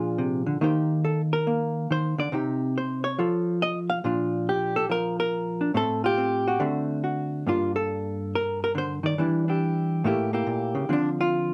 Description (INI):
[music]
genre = solo jazz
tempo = 140 BPM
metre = 4/4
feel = swing 65% on 8ths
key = G minor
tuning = A4 = 440 Hz
[part]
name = hollow-body jazz guitar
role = solo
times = 0.0-11.5 s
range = G2 to F5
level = -26 LUFS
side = equal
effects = none
[sound]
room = moderate club reverb, RT60 0.5 s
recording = none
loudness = -26 LUFS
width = mono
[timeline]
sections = 0.0-7.5 A section; 7.5-11.5 B section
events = none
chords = 0.0 Bb9; 0.6 Eb6; 2.3 Cm; 3.2 Faug; 4.0 Bb; 5.7 Am7; 6.6 D7; 7.5 Gmadd9; 9.2 Em7; 10.0 A7b9; 10.9 Dm7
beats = 0.17 | 0.60 1.03 1.46 1.89 | 2.32 2.75 3.17 3.60 | 4.03 4.46 4.89 5.32 | 5.75 6.18 6.61 7.03 | 7.46 7.89 8.32 8.75 | 9.18 9.61 10.04 10.47 | 10.89 11.32